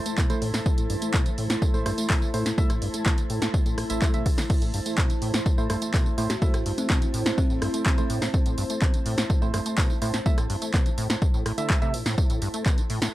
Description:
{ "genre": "acid house", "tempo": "125 BPM", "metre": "4/4", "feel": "straight", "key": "unclear", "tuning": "A4 = 443 Hz", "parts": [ { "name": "dark analog pad", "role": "sustained chords", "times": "0.0-13.1 s", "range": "A3 to C5", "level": "-34 LUFS", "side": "equal", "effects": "lush chorus, sidechain pumping" }, { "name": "percussive organ stab", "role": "stabs", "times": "0.0-12.0 s", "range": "A3 to E5", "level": "-32 LUFS", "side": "right 3 dB", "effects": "chorus, analog delay" }, { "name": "granular cloud pad", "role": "texture", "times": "0.0-13.1 s", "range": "E4 to A5", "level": "-35 LUFS", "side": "right 1 dB", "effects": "built-in reverb, sidechain pumping" }, { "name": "deep acid bass", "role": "riff", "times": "0.1-13.1 s", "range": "A1 to A3", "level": "-31 LUFS", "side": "equal", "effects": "overdrive, analog chorus, analog delay" }, { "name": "punchy analog drum machine", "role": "drums", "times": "0.1-13.1 s", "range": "crash cymbal, handclaps, hi-hat, rim click, snare drum, tambourine", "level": "-29 LUFS", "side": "equal", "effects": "none" }, { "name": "electronic kick drum", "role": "drums", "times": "0.2-12.8 s", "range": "none", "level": "-23 LUFS", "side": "equal", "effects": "none" }, { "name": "buzzing kalimba", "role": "melody", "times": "6.3-7.7 s", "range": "C4 to F#4", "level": "-34 LUFS", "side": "equal", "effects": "analog delay" } ], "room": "little or no reverb", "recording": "dry, gritty hardware recording", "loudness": "-22 LUFS", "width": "side -16 dB against mid", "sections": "0.0-13.1 A section", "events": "none", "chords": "0.0 Am" }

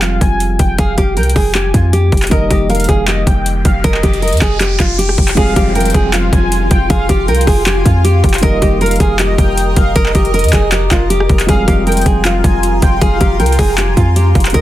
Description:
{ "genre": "hip hop, trap", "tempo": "157 BPM", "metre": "4/4", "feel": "half-time", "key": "F minor", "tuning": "A4 = 440 Hz", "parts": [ { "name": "nylon-string guitar", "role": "melody", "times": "0.0-14.6 s", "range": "F4 to Bb4", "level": "-17 LUFS", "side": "equal", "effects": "none" }, { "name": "warm velvety synth lead", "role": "second line", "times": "0.0-14.6 s", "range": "Eb5 to Ab5", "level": "-21 LUFS", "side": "left 1 dB", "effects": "chorus, digital delay" }, { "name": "dark concert grand piano", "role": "accompaniment", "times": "0.0-14.6 s", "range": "Eb3 to G4", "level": "-22 LUFS", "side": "equal", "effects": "none" }, { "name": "warm 808-style bass", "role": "bass", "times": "0.0-14.6 s", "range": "F1 to F2", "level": "-15 LUFS", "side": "equal", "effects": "none" }, { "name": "trap drum kit", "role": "drums", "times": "0.0-14.6 s", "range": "handclaps, hi-hat, kick drum, rim click", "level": "-14 LUFS", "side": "equal", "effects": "overdrive" }, { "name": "riser and downlifter", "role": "sound effects", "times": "3.4-8.4 s", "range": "none", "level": "-25 LUFS", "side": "equal", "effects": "none" }, { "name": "granular cloud pad", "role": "sustained chords", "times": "6.1-14.6 s", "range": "F4 to Eb6", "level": "-22 LUFS", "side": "equal", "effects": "built-in reverb" } ], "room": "little or no reverb", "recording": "dense, heavily limited modern master", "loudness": "-10 LUFS", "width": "side -14 dB against mid", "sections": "0.0-5.4 A section; 5.4-14.6 B section", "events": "riser 3.4-5.4", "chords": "0.0 Fmadd9; 2.3 Eb/F; 5.4 Fmadd9; 8.4 Eb/F; 11.5 Fmadd9" }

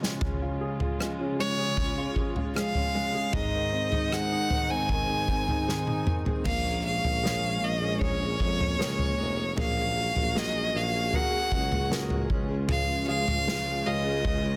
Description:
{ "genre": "pop ballad", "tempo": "77 BPM", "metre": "4/4", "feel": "straight", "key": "Bb minor", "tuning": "A4 = 439 Hz", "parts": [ { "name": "clear baby grand piano", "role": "accompaniment", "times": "0.0-14.6 s", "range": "Ab2 to F5", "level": "-37 LUFS", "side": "equal", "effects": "none" }, { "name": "dark studio string section", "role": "sustained chords", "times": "0.0-14.6 s", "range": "Ab2 to Ab4", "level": "-38 LUFS", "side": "equal", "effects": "none" }, { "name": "fingerpicked plugged-in steel-string acoustic guitar", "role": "arpeggios", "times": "0.0-14.6 s", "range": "Ab2 to Ab4", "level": "-39 LUFS", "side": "equal", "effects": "digital delay" }, { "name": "unplugged drum kit", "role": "drums", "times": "0.0-14.4 s", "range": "crash cymbal, kick drum, rim click, snare drum, toms", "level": "-33 LUFS", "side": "equal", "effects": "soft clipping on snare" }, { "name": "clear violin", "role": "melody", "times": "1.4-14.6 s", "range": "Db5 to Ab5", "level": "-32 LUFS", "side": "equal", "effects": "none" }, { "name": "mellow tuba", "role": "bass", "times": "6.5-14.6 s", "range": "F1 to F2", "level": "-34 LUFS", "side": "equal", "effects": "none" } ], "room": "light reverb, studio ambience", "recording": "dense, heavily limited modern master", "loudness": "-28 LUFS", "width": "mono", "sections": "0.0-6.5 A section; 6.5-14.6 B section", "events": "drum fill 0.0, 5.7-6.5", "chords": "0.0 Db; 3.3 Ab; 6.5 Bbm7; 9.6 Gbadd9/Bb; 12.3 Db" }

